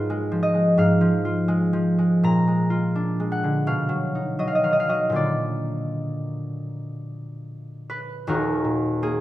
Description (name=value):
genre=classical, solo harp piece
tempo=75-86 BPM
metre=4/4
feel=rubato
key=unclear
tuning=A4 = 440 Hz
part: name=concert harp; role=solo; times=0.0-9.2 s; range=Eb1 to Bb5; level=-21 LUFS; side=equal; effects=none
room=wet recital hall reverb, RT60 1.6 s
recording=none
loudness=-20 LUFS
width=side -15 dB against mid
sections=0.0-8.3 A section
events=none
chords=0.0 Fdim/Ab; 2.3 Bb7; 3.7 B; 5.2 Bb; 8.3 Ebm